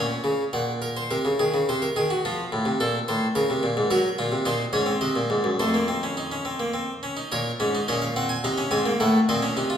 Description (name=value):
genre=classical, baroque-style 3-part fugue for harpsichord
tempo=106 BPM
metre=3/4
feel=straight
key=Bb minor from 3.9 s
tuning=A4 = 442 Hz
part: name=harpsichord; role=solo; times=0.0-9.8 s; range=F2 to Bb5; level=-22 LUFS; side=equal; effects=none
room=wet recital hall reverb, RT60 1.4 s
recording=heard from further back in the room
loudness=-22 LUFS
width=side -8 dB against mid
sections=0.5-7.3 A section; 7.3-9.8 B section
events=none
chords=0.0 Bbm; 0.5 Gb/Bb; 1.7 Cm7b5; 2.2 F; 3.4 Bbm; 3.9 Gb; 5.0 Cdim; 5.6 F5; 7.3 Bbm; 8.5 Abadd9; 9.0 Adim7